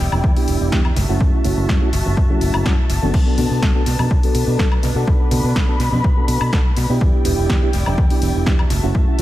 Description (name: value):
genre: filtered disco house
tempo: 124 BPM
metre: 4/4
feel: straight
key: B minor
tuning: A4 = 441 Hz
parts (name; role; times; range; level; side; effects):
- dark chamber string section; sustained chords; 0.0-9.2 s; D4 to B5; -27 LUFS; left 1 dB; vintage 12-bit sampler grit, sidechain pumping, low-pass filter
- fingered electric bass; bass; 0.0-9.2 s; E1 to B2; -20 LUFS; equal; sidechain pumping, low-pass filter
- house drum kit; drums; 0.1-9.2 s; crash cymbal, hi-hat, snare drum, woodblock; -26 LUFS; left 1 dB; sidechain pumping on hats, sidechain pumping on perc, sidechain pumping on cymbals, analog delay
- tambourine and congas; percussion; 0.1-9.2 s; none; -29 LUFS; right 2 dB; sidechain pumping on perc, low-pass filter on perc, analog delay
- electronic kick drum; drums; 0.2-9.0 s; none; -17 LUFS; equal; none
- mellow reed electric piano; accompaniment; 0.4-9.2 s; A3 to A4; -23 LUFS; right 1 dB; phaser, vintage 12-bit sampler grit, sidechain pumping, low-pass filter, analog delay
room: digital ambience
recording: echo-heavy mix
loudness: -14 LUFS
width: side -15 dB against mid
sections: 0.0-9.2 A section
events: none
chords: 0.0 Em7; 1.0 F#m7; 3.1 Bm7; 7.0 Em7; 8.7 F#m7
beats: 0.23 0.72 | 1.20 1.69 2.17 2.65 | 3.14 3.62 4.11 4.59 | 5.07 5.56 6.04 6.53 | 7.01 7.49 7.98 8.46 | 8.95